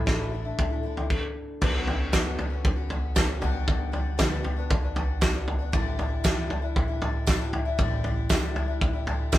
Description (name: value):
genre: indie folk with a building arrangement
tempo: 117 BPM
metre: 4/4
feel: straight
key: unclear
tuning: A4 = 440 Hz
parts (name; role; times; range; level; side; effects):
- fingerpicked steel-string acoustic guitar; accompaniment; 0.0-3.2 s; E2 to E4; -38 LUFS; left 2 dB; none
- picked twelve-string acoustic guitar; accompaniment; 0.0-9.4 s; A2 to F#4; -34 LUFS; left 5 dB; none
- upright bass; bass; 0.0-9.4 s; A1 to A2; -34 LUFS; right 1 dB; none
- loose indie drum kit; drums; 0.1-9.4 s; crash cymbal, kick drum, snare drum, toms; -25 LUFS; equal; none
- group handclap; percussion; 2.1-9.4 s; none; -37 LUFS; right 2 dB; none
- tambourine; percussion; 2.1-9.4 s; none; -41 LUFS; right 8 dB; none
room: light reverb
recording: band playing live in one room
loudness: -24 LUFS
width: side -14 dB against mid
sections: 0.0-1.6 A section; 1.6-9.4 B section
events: none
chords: 0.0 Asus4; 1.6 Bsus2; 3.4 Gmaj7/B; 5.7 A7sus4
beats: 0.07 0.59 1.10 | 1.62 2.13 2.65 3.16 | 3.68 4.19 4.70 5.22 | 5.73 6.24 6.76 7.27 | 7.79 8.30 8.81 9.33